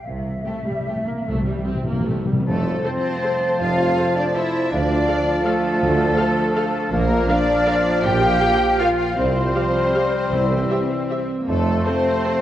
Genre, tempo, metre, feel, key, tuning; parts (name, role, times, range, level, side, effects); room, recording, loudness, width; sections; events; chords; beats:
classical, orchestral ballroom waltz; 140-174 BPM; 3/4; rubato; F major; A4 = 440 Hz
large flute ensemble; second line; 0.0-12.4 s; A4 to G5; -27 LUFS; left 2 dB
clear symphonic cello section; bass; 0.1-12.4 s; C3 to G4; -25 LUFS; right 1 dB
rich symphonic double bass section; bass; 0.1-11.8 s; Bb1 to F2; -27 LUFS; right 2 dB
timpani; percussion; 0.1-2.5, 10.3-10.9 s; C3; -26 LUFS; left 1 dB
dark symphonic violin section; melody; 0.5-12.4 s; A4 to G5; -29 LUFS; left 3 dB
clear symphonic violin section; second line; 0.5-12.4 s; G4 to G5; -31 LUFS; left 3 dB
rich symphonic viola section; accompaniment; 0.5-12.3 s; G3 to F5; -29 LUFS; equal
warm oboe; second line; 2.5-12.4 s; C5 to A5; -30 LUFS; right 1 dB
warm bassoon; accompaniment; 2.5-12.4 s; F3 to A3; -28 LUFS; right 1 dB
dark French horn section; sustained chords; 2.5-12.4 s; F3 to F4; -28 LUFS; left 1 dB
warm trombone section; sustained chords; 2.5-12.4 s; Bb2 to F3; -28 LUFS; right 2 dB
dark trumpet section; stabs; 2.5-12.4 s; C5 to F5; -26 LUFS; left 1 dB
warm tuba; bass; 2.5-11.8 s; F1 to D2; -28 LUFS; right 2 dB
wet concert hall reverb, RT60 1.9 s; worn, warbling old tape, cassette tape, warbly pitch drift; -17 LUFS; side -12 dB against mid
0.0-2.5 A section; 2.5-12.4 B section
timpani fill 0.1-2.5
0.1 C; 2.5 F; 4.7 Dm; 6.9 Bb; 9.2 Csus4; 10.3 C; 11.5 F
| 0.05 0.46 0.88 | 1.28 1.68 2.09 | 2.48 2.85 3.24 | 3.61 3.98 4.36 | 4.73 5.09 5.46 | 5.82 6.18 6.56 | 6.93 7.29 7.67 | 8.04 8.41 8.80 | 9.17 9.55 9.95 | 10.33 10.71 11.11 | 11.48 11.86 12.25